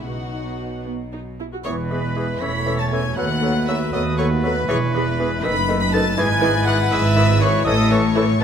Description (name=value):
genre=quick classical-period movement for symphony orchestra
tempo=79 BPM (dotted quarters)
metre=6/8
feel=rubato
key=E major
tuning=A4 = 440 Hz
part: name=warm chamber violin section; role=melody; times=0.0-8.4 s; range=F#5 to B6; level=-29 LUFS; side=left 2 dB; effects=none
part: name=rich studio violin section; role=second line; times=0.0-8.4 s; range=F#4 to B5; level=-27 LUFS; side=left 3 dB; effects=none
part: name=warm chamber viola section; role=accompaniment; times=0.0-8.3 s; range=B3 to B4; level=-29 LUFS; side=right 1 dB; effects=none
part: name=mellow French horn section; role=sustained chords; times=0.0-8.4 s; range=F#3 to F#4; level=-27 LUFS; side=left 4 dB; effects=none
part: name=warm chamber cello section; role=bass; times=0.0-8.4 s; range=D#2 to B2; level=-24 LUFS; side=left 1 dB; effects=none
part: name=warm studio double bass section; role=bass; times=0.0-8.4 s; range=E1 to D#2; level=-24 LUFS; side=right 4 dB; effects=none
part: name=clear clarinet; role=second line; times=1.6-8.4 s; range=G#4 to B4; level=-33 LUFS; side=left 1 dB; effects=none
part: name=clear oboe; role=second line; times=1.6-8.4 s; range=B4 to B5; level=-28 LUFS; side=equal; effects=none
part: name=mellow concert flute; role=second line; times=1.6-8.4 s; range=B4 to F#5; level=-32 LUFS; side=left 3 dB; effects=none
part: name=clear trumpet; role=stabs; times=1.6-8.4 s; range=A4 to C#5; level=-27 LUFS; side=right 1 dB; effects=none
part: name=warm bassoon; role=accompaniment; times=1.7-8.4 s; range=D#3 to F#3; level=-29 LUFS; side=right 2 dB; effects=none
room=moderate concert hall reverb, RT60 2.1 s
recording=none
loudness=-17 LUFS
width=side -8 dB against mid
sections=0.0-1.7 A section; 1.7-8.4 B section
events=none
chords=0.0 B; 1.7 E; 2.4 A/E; 3.2 B7/D#; 4.7 E; 5.4 B7/F#; 6.2 E/G#; 7.7 A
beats=| 0.05 0.85 | 1.65 2.42 | 3.18 3.94 | 4.70 5.44 | 6.19 6.92 | 7.66 8.40